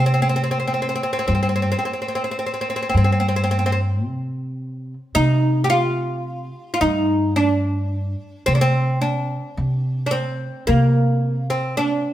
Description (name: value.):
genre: Turkish makam ensemble.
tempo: 108 BPM (eighths).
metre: 10/8.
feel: straight.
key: C makam huseyni.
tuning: A4 = 440 Hz.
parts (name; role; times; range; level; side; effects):
oud; melody; 0.0-12.1 s; Bb3 to G4; -21 LUFS; equal; none.
upright bass; bass; 0.0-12.0 s; G2 to C3; -20 LUFS; equal; none.
room: moderate stone room reverb, RT60 1.2 s.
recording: band playing live in one room.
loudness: -18 LUFS.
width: side -12 dB against mid.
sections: 0.0-5.2 A section; 5.2-12.1 B section.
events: none.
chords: none.